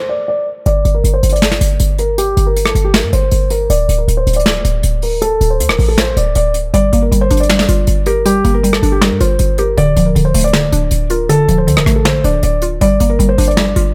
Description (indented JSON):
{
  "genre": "hip hop, trap",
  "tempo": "158 BPM",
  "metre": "4/4",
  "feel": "half-time",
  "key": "G minor",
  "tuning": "A4 = 441 Hz",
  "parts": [
    { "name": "felt-muted upright piano", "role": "melody", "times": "0.0-13.9 s", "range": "G4 to D5", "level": "-19 LUFS", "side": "equal", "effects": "low-pass filter" },
    { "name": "short 808-style bass", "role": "bass", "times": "0.7-13.9 s", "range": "D1 to G2", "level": "-17 LUFS", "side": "equal", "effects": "none" },
    { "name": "soft brush drum kit", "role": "drums", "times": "0.7-13.8 s", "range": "hi-hat, rim click, snare drum", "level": "-20 LUFS", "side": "equal", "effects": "none" },
    { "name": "mallet-like synth pluck", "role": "accompaniment", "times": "6.7-13.9 s", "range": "D3 to G4", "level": "-18 LUFS", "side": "equal", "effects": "chorus, low-pass filter" }
  ],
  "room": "small room ambience",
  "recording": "none",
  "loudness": "-13 LUFS",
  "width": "mono",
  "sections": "0.0-13.9 A section",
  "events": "break 0.0-0.7; filter sweep 0.0-6.7",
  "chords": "0.0 N.C.; 0.7 G5; 3.7 D5; 6.7 Gm7; 9.8 Dm; 12.8 Gm7"
}